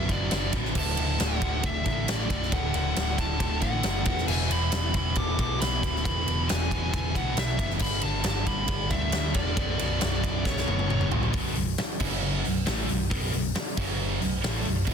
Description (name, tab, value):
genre	hard rock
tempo	136 BPM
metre	4/4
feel	straight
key	B minor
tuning	A4 = 443 Hz
part	high-gain lead guitar	melody	0.0-11.1 s	D5 to D6	-32 LUFS	left 1 dB	distortion
part	high-gain distorted guitar	riff	0.0-14.9 s	B1 to A3	-30 LUFS	equal	distortion
part	picked electric bass	bass	0.0-14.9 s	B0 to D2	-30 LUFS	equal	none
part	big rock drum kit	drums	0.1-14.9 s	crash cymbal, hi-hat, kick drum, ride cymbal, snare drum, toms	-28 LUFS	equal	none
room	small room ambience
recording	dense, heavily limited modern master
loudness	-24 LUFS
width	side -7 dB against mid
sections	0.0-11.3 A section; 11.3-14.9 B section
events	drum fill 10.5-11.3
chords	0.0 Bm; 0.8 D; 4.1 E; 7.8 G; 9.6 Bm; 11.3 B5; 12.0 F#5; 12.4 B5; 13.8 F#5; 14.2 B5